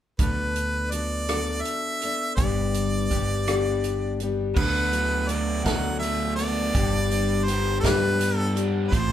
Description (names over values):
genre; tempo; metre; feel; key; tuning
folk rock and heartland rock; 55 BPM (dotted quarters); 6/8; straight; D major; A4 = 442 Hz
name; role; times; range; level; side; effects
bright harmonica; melody; 0.2-9.1 s; B4 to F#5; -28 LUFS; right 1 dB; none
picked steel-string acoustic guitar; accompaniment; 0.2-9.1 s; G2 to A4; -28 LUFS; left 6 dB; none
picked electric bass; bass; 0.2-9.1 s; G1 to G2; -28 LUFS; equal; none
natural country drum kit; drums; 0.2-9.1 s; crash cymbal, hi-hat, kick drum, rim click, snare drum; -27 LUFS; right 1 dB; none
raw garage guitar; riff; 4.6-9.1 s; G2 to D4; -29 LUFS; right 2 dB; overdrive
room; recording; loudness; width
moderate studio reverb, RT60 0.8 s; band playing live in one room; -22 LUFS; side -11 dB against mid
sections
0.2-4.6 A section; 4.6-9.1 B section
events
none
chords
0.2 D6; 2.4 G; 4.6 D6; 6.7 G